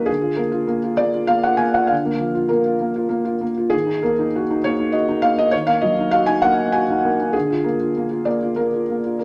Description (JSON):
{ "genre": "neoclassical minimalist piano", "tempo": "99 BPM", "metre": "3/4", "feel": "rubato", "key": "unclear", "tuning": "A4 = 440 Hz", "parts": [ { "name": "felt-muted upright piano", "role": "solo", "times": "0.0-9.2 s", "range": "D3 to G#5", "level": "-19 LUFS", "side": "equal", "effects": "none" } ], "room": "moderate studio reverb, RT60 0.8 s", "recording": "none", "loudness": "-19 LUFS", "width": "mono", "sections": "0.0-9.2 A section", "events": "none", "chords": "0.1 A#/D; 3.7 D#m; 7.3 A#/D", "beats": "| 0.08 0.69 1.31 | 1.91 2.52 3.12 | 3.73 4.33 4.92 | 5.52 6.13 6.74 | 7.34 7.95 8.57 | 9.21" }